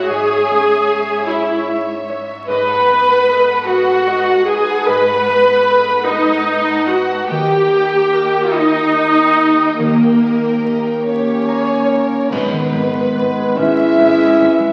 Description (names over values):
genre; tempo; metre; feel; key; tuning
cinematic, emotional film score for orchestra; 49 BPM (dotted quarters); 6/8; rubato; G# minor; A4 = 442 Hz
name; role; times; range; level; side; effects
rich studio violin section; melody; 0.0-14.7 s; A#4 to B5; -25 LUFS; equal; none
rich studio violin section; second line; 0.0-14.7 s; G4 to G5; -29 LUFS; equal; none
warm studio viola section; accompaniment; 0.0-14.7 s; G#3 to B4; -16 LUFS; equal; none
concert harp; arpeggios; 0.0-14.7 s; G#2 to B5; -27 LUFS; equal; none
warm studio cello section; bass; 0.0-14.5 s; D#2 to G#2; -33 LUFS; equal; none
mellow hollow silver concert flute; second line; 11.1-14.7 s; B4 to E5; -22 LUFS; equal; none
warm clarinet; second line; 11.1-14.7 s; G#3 to C#4; -22 LUFS; equal; none
mellow French horn section; sustained chords; 11.1-14.7 s; B3 to E4; -19 LUFS; equal; none
warm studio double bass section; bass; 12.3-14.5 s; G#1; -31 LUFS; equal; none
clash cymbals and concert bass drum; percussion; 12.3-13.9 s; none; -34 LUFS; equal; none
room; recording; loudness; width
wet recital hall reverb, RT60 1.3 s; very old 78 rpm record, vinyl crackle; -14 LUFS; mono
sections
0.0-12.3 A section; 12.3-14.7 B section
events
band accent 12.3-13.2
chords
0.0 C#m/G#; 2.5 B7/G#; 7.3 D#; 12.3 G#m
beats
| 0.10 1.30 | 2.49 3.68 | 4.88 6.10 | 7.30 8.54 | 9.80 11.06 | 12.32 13.58